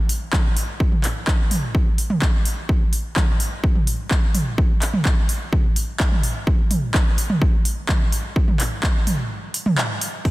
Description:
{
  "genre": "techno",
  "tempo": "127 BPM",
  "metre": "4/4",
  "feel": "straight",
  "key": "none",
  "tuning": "none",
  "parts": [
    { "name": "techno drum kit", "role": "drums", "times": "0.1-10.3 s", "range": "crash cymbal, handclaps, hi-hat, toms, woodblock", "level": "-23 LUFS", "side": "right 1 dB", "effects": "overdrive, sidechain pumping on toms, studio reverb, sidechain pumping on hats, sidechain pumping on cymbals, sidechain pumping on perc" },
    { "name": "electronic kick drum", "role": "drums", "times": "0.3-10.3 s", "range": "none", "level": "-19 LUFS", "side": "equal", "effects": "overdrive, studio reverb" }
  ],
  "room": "little or no reverb",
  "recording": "dense, heavily limited modern master",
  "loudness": "-18 LUFS",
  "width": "side -18 dB against mid",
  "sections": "0.0-10.3 A section",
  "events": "break 9.3-10.3",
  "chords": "none",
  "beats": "0.33 | 0.80 1.27 1.75 2.22 | 2.69 3.16 3.64 4.11 | 4.58 5.05 5.53 6.00 | 6.47 6.94 7.42 7.89 | 8.36 8.83 9.31 9.78 | 10.25"
}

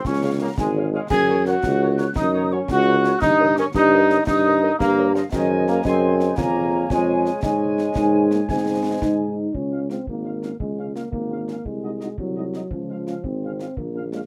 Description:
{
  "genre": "military-style march for wind band",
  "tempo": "114 BPM (dotted quarters)",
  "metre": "6/8",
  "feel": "straight",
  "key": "Db major",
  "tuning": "A4 = 440 Hz",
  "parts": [
    { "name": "mellow flute section", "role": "second line", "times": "0.0-9.3 s", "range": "Eb5 to Ab6", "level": "-31 LUFS", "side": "equal", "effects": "none" },
    { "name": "warm trombone section", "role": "sustained chords", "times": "0.0-9.3 s", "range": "Eb3 to Ab4", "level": "-24 LUFS", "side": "equal", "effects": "none" },
    { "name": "concert snare drum, concert bass drum and clash cymbals", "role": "drums", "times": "0.0-14.3 s", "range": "none", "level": "-34 LUFS", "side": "equal", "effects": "none" },
    { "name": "warm tuba", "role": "bass", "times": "0.1-14.2 s", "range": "Ab1 to Ab2", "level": "-24 LUFS", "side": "equal", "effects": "none" },
    { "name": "dark trumpet section", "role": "melody", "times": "0.2-14.2 s", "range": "Db5 to Ab5", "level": "-35 LUFS", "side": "equal", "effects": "none" },
    { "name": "mellow French horn section", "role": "accompaniment", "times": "0.2-14.2 s", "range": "Ab3 to Eb5", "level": "-31 LUFS", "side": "equal", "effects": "none" },
    { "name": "mellow euphonium", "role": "second line", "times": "8.0-14.2 s", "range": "Eb3 to Eb4", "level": "-31 LUFS", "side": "equal", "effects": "none" }
  ],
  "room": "light reverb",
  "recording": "none",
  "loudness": "-21 LUFS",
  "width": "mono",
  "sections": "0.0-9.5 A section; 9.5-14.3 B section",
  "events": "none",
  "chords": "0.0 Db; 1.1 Gb; 3.2 Eb7/G; 5.3 Ab7/Gb; 6.4 Db/F; 7.4 Absus4; 8.5 Ab; 9.5 Db; 11.7 Ab7/C; 12.7 Db",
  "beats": "| 0.06 0.58 | 1.11 1.64 | 2.17 2.69 | 3.22 3.75 | 4.27 4.80 | 5.33 5.85 | 6.38 6.91 | 7.43 7.96 | 8.49 9.01 | 9.54 10.07 | 10.60 11.13 | 11.65 12.18 | 12.71 13.24 | 13.77"
}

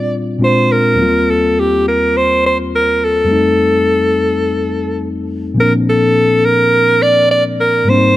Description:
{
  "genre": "soul",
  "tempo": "104 BPM",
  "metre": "4/4",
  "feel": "straight",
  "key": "Bb major",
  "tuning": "A4 = 440 Hz",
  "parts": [
    { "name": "edgy alto saxophone", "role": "melody", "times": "0.0-8.2 s", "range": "G4 to D5", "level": "-12 LUFS", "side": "equal", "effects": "none" },
    { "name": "mellow tine electric piano", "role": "accompaniment", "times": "0.0-8.2 s", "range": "Eb2 to F4", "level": "-15 LUFS", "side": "left 2 dB", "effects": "none" }
  ],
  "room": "moderate plate reverb, RT60 2.8 s",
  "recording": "none",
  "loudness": "-11 LUFS",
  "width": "side -14 dB against mid",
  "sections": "0.0-5.6 A section; 5.6-8.2 B section",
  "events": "none",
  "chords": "0.4 Bb9; 1.0 Eb69; 3.3 F9; 5.6 Bbmaj7",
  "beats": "0.41 | 0.99 1.56 2.14 2.71 | 3.29 3.86 4.44 5.01 | 5.59 6.16 6.74 7.31 | 7.88"
}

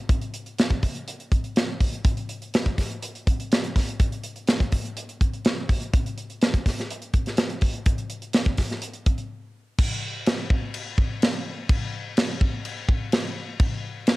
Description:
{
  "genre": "rock",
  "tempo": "124 BPM",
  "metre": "4/4",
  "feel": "straight",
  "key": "none",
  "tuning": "none",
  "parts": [
    { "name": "modern studio drum kit", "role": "drums", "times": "0.1-14.2 s", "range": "crash cymbal, hi-hat, kick drum, snare drum", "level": "-22 LUFS", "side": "equal", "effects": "cassette tape" }
  ],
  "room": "light reverb",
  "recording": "home recording on cassette",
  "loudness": "-22 LUFS",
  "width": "side -20 dB against mid",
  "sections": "0.0-9.8 A section; 9.8-14.2 B section",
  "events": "break 9.3-9.8",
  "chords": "none",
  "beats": "| 0.10 0.58 1.07 1.56 | 2.05 2.54 3.02 3.51 | 3.99 4.48 4.96 5.45 | 5.93 6.42 6.90 7.38 | 7.86 8.34 8.82 9.30 | 9.78 10.26 10.74 11.21 | 11.69 12.17 12.64 13.12 | 13.60 14.07"
}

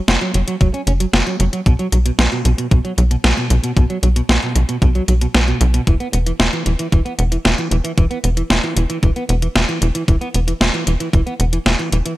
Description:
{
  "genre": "synthwave",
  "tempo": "114 BPM",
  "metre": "4/4",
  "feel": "straight",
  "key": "unclear",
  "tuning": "A4 = 440 Hz",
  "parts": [
    { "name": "electric guitar at the edge of break-up", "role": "riff", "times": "0.1-12.1 s", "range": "B2 to F#4", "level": "-22 LUFS", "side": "right 2 dB", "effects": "wide subtle chorus, digital delay" },
    { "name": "tight sequencer bass", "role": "bass", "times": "0.1-12.0 s", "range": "E1 to B1", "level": "-16 LUFS", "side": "equal", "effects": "none" },
    { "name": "clean 12-bit digital drum machine", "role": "drums", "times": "0.1-12.2 s", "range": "hi-hat, snare drum", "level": "-19 LUFS", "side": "equal", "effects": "overdrive" },
    { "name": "electronic kick drum", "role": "drums", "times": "0.6-11.2 s", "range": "none", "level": "-15 LUFS", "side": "equal", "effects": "overdrive" }
  ],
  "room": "light reverb",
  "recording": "bright 1980s-style digital production",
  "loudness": "-14 LUFS",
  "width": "side -17 dB against mid",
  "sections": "0.0-12.2 A section",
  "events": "none",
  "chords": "0.0 F#5; 1.7 B5; 5.9 E5",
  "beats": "0.08 0.61 1.13 | 1.66 2.19 2.71 3.24 | 3.77 4.29 4.82 5.34 | 5.87 6.40 6.92 7.45 | 7.98 8.50 9.03 9.55 | 10.08 10.61 11.13 11.66"
}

